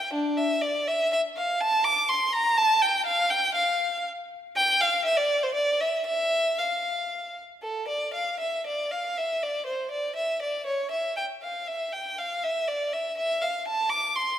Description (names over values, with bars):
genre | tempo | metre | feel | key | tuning
classical, baroque-style suite movement for unaccompanied violin | 120 BPM | 3/4 | rubato | F major | A4 = 440 Hz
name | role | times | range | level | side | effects
rich violin | solo | 0.0-14.4 s | D4 to D6 | -24 LUFS | equal | none
room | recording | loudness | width
moderate concert hall reverb, RT60 2.0 s | minimal, uncompressed stereo recording | -24 LUFS | side -10 dB against mid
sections
0.0-7.6 A section; 7.6-14.4 A section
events
none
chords
none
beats
| 0.13 0.62 1.12 | 1.62 2.10 2.59 | 3.08 3.57 4.07 | 4.57 5.07 5.57 | 6.09 6.60 7.13 | 7.65 8.16 8.67 | 9.18 9.68 10.18 | 10.68 11.18 11.69 | 12.19 12.68 13.18 | 13.67 14.16